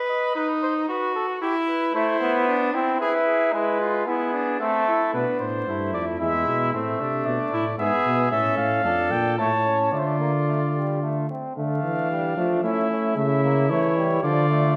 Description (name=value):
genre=classical, imitative canzona for brass ensemble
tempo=113 BPM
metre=3/4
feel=straight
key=A minor, D minor from 8.3 s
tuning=A4 = 440 Hz
part: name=clear trumpet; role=second line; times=0.0-14.8 s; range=C4 to C#5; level=-29 LUFS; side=equal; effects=none
part: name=warm cornet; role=melody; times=0.1-14.8 s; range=G4 to A5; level=-29 LUFS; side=equal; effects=none
part: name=brilliant trombone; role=accompaniment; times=1.9-14.8 s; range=F3 to E4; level=-28 LUFS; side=equal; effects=none
part: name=mellow bass trombone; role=bass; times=5.1-14.8 s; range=E2 to A3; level=-27 LUFS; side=equal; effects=none
room=wet recital hall reverb, RT60 1.4 s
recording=vinyl crackle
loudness=-23 LUFS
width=mono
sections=0.0-5.1 A section; 5.1-11.6 B section; 11.6-14.8 C section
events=none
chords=0.4 B/D#; 1.4 Em; 1.9 Am; 3.0 E; 3.5 E/G#; 4.6 Am; 5.1 Bdim; 6.2 E; 6.7 Am; 7.8 E/G#; 8.3 A; 8.8 Dm/F; 9.4 A; 9.9 Dm; 12.6 A; 13.2 A/C#; 14.2 Dm